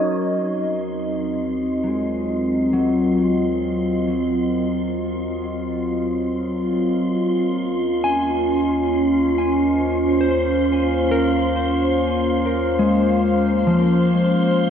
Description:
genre	ambient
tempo	67 BPM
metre	4/4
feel	straight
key	Eb dorian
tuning	A4 = 440 Hz
part	warbly tape-like pad	sustained chords	0.0-14.7 s	Gb3 to F5	-19 LUFS	equal	chorus, built-in reverb
part	mellow electric guitar	arpeggios	0.0-14.7 s	F3 to Ab5	-23 LUFS	left 2 dB	tape echo
part	warm sub bass	bass	0.0-14.7 s	Eb2	-32 LUFS	left 1 dB	none
part	wind-like tuned noise texture	texture	0.0-14.7 s	C6	-33 LUFS	left 1 dB	built-in reverb
room	wet lush hall reverb, RT60 2.7 s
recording	worn, warbling old tape, cassette tape, warbly pitch drift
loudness	-18 LUFS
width	side -8 dB against mid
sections	0.0-14.7 A section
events	fade-in on sub bass 0.0-14.7; fade-in on synth texture 0.0-14.7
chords	0.0 Ebm69; 7.2 Bbmadd9/Eb

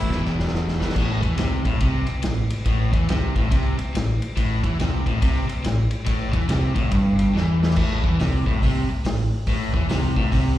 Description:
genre	blues rock power trio and southern rock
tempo	141 BPM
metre	4/4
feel	swing 63% on 8ths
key	A minor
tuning	A4 = 440 Hz
part	crunchy overdriven guitar	riff	0.0-10.6 s	E2 to E3	-23 LUFS	equal	none
part	vintage drum kit	drums	0.0-10.4 s	crash cymbal, hi-hat, kick drum, ride cymbal, snare drum	-24 LUFS	equal	none
part	growling fingered electric bass	bass	0.1-10.6 s	E1 to E2	-25 LUFS	equal	overdrive
room	light reverb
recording	live gig heard through the venue's PA, recital hall reverb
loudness	-19 LUFS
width	side -14 dB against mid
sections	1.0-7.8 A section; 7.8-10.6 A section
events	drum fill 0.1-1.0, 7.3-7.8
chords	0.1 E5; 1.0 Am

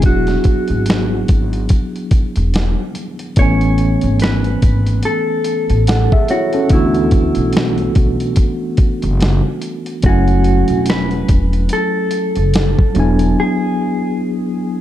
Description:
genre	lo-fi hip hop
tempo	72 BPM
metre	4/4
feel	swing 58% on 16ths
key	A major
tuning	A4 = 438 Hz
part	tine electric piano	accompaniment	0.0-14.8 s	E3 to G#5	-18 LUFS	equal	overdrive, fast stereo tremolo, cassette tape, low-pass filter
part	upright bass	bass	0.0-13.3 s	E1 to D2	-16 LUFS	equal	none
part	dusty soul sampler-style drum kit	drums	0.0-13.4 s	hi-hat, kick drum, snare drum	-15 LUFS	equal	none
part	mellow electric guitar	melody	0.1-14.8 s	E4 to C#5	-21 LUFS	right 1 dB	low-pass filter, analog delay
room	little or no reverb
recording	dark, warm production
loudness	-13 LUFS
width	side -12 dB against mid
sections	0.0-14.8 A section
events	break 13.4-14.8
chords	0.0 E9; 3.4 Amaj9; 6.7 D69; 10.0 F#m9; 13.0 E9

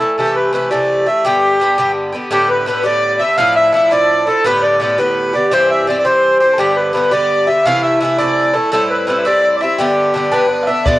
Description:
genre	celtic folk, Celtic jig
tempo	112 BPM (dotted quarters)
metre	6/8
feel	straight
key	G mixolydian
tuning	A4 = 441 Hz
part	accordion	melody	0.0-11.0 s	G4 to F5	-13 LUFS	equal	cassette tape
part	Irish bouzouki	accompaniment	0.0-11.0 s	G2 to G4	-18 LUFS	equal	cassette tape
part	dark fiddle	second line	2.3-11.0 s	G4 to F5	-21 LUFS	left 4 dB	cassette tape
part	bluegrass banjo	second line	10.3-11.0 s	B4 to F5	-23 LUFS	right 1 dB	none
part	bodhran	percussion	10.9 s	none	-14 LUFS	left 1 dB	none
room	wet spring reverb, RT60 1.4 s, small room ambience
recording	home recording on cassette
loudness	-12 LUFS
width	side -16 dB against mid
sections	0.0-2.3 A section; 2.3-10.9 A section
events	none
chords	0.2 C6; 1.2 G; 2.3 Gadd9; 3.4 Dmadd9; 4.4 Gadd9; 5.5 C; 6.6 G; 7.7 Am; 8.7 C6; 9.8 G

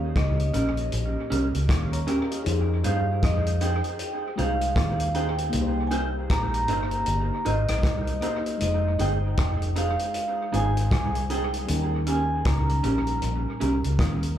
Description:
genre	lovers rock reggae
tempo	78 BPM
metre	4/4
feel	swing 61% on 16ths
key	F minor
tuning	A4 = 439 Hz
part	FM electric piano with soft pad layer	accompaniment	0.0-14.4 s	G3 to Db6	-33 LUFS	left 4 dB	chorus, dub echo, plate reverb, slapback echo
part	vintage muted fingered electric bass	bass	0.0-14.3 s	F1 to G2	-26 LUFS	equal	none
part	vibraphone with medium hard mallets	melody	0.2-13.2 s	Eb5 to Bb5	-30 LUFS	right 1 dB	tape echo, plate reverb, slapback echo
part	vintage drum kit	drums	0.2-14.4 s	hi-hat, kick drum, rim click	-29 LUFS	equal	dub echo
part	electric guitar through a small old amp	stabs	0.5-13.9 s	Db4 to C5	-30 LUFS	right 3 dB	dub echo, plate reverb, slapback echo
room	light reverb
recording	live gig heard through the venue's PA, club reverb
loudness	-22 LUFS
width	side -10 dB against mid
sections	0.0-14.4 A section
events	none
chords	0.0 Eb7; 2.5 Fm7; 5.5 Cm7; 8.6 Fm7; 11.7 Eb7

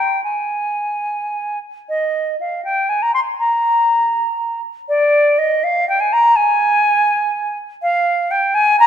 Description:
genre	classical, baroque-style fantasia for unaccompanied flute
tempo	81 BPM (dotted quarters)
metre	6/8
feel	rubato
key	unclear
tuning	A4 = 440 Hz
part	silver concert flute	solo	0.0-8.9 s	D5 to C6	-14 LUFS	equal	none
room	moderate scoring stage reverb, RT60 1.7 s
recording	minimal, uncompressed stereo recording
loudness	-15 LUFS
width	side -9 dB against mid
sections	0.0-1.9 A section; 1.9-8.9 B section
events	none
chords	none

